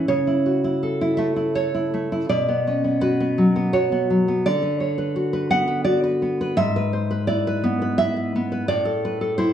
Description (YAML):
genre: romantic piece for solo classical guitar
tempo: 84 BPM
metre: 3/4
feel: rubato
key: unclear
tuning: A4 = 440 Hz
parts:
  - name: nylon-string guitar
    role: solo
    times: 0.0-9.5 s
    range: G#2 to F#5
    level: -19 LUFS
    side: equal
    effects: none
room: light reverb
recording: studio reverb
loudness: -19 LUFS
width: side -9 dB against mid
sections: 0.0-9.5 A section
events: none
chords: 0.1 A/C#; 2.3 Bm; 4.5 Bm/D; 6.6 E7/G#; 8.7 Am